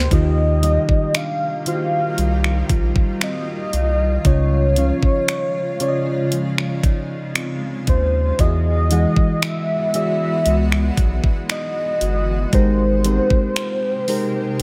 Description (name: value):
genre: contemporary R&B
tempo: 58 BPM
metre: 4/4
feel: straight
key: unclear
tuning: A4 = 436 Hz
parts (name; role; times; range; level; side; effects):
- warm velvety synth lead; melody; 0.0-14.6 s; C5 to F5; -25 LUFS; equal; chorus, delay
- mellow FM electric piano; accompaniment; 0.0-14.6 s; Db3 to F#5; -26 LUFS; equal; chorus
- granular cloud pad; sustained chords; 0.0-14.6 s; C3 to G4; -31 LUFS; equal; built-in reverb, sidechain pumping
- mellow electric guitar; arpeggios; 0.0-14.6 s; Db3 to Bb4; -30 LUFS; equal; none
- round analog bass; bass; 0.0-14.6 s; G1 to E2; -21 LUFS; equal; none
- trap drum kit; drums; 0.1-14.6 s; finger snaps, hi-hat, kick drum; -22 LUFS; equal; none
room: little or no reverb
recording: none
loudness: -19 LUFS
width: mono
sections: 0.1-14.6 A section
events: none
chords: 0.1 Ebmaj9; 4.3 Dbmaj9; 8.4 Emaj9; 12.5 Abmaj9